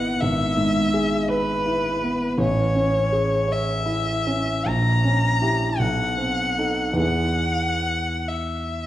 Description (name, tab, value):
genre	classical, romantic duo for violin and grand piano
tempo	47-56 BPM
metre	4/4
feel	rubato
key	E major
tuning	A4 = 440 Hz
part	rich violin	melody	0.0-8.9 s	B4 to A#5	-24 LUFS	left 2 dB	none
part	warm concert grand piano	accompaniment	0.0-8.9 s	G#1 to C#5	-22 LUFS	right 1 dB	none
room	wet recital hall reverb, RT60 1.5 s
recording	dark, warm production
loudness	-20 LUFS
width	side -13 dB against mid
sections	0.0-8.9 A section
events	none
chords	0.0 E/G#; 2.4 Amaj7; 4.7 A#dim7; 5.8 B7b9; 7.0 E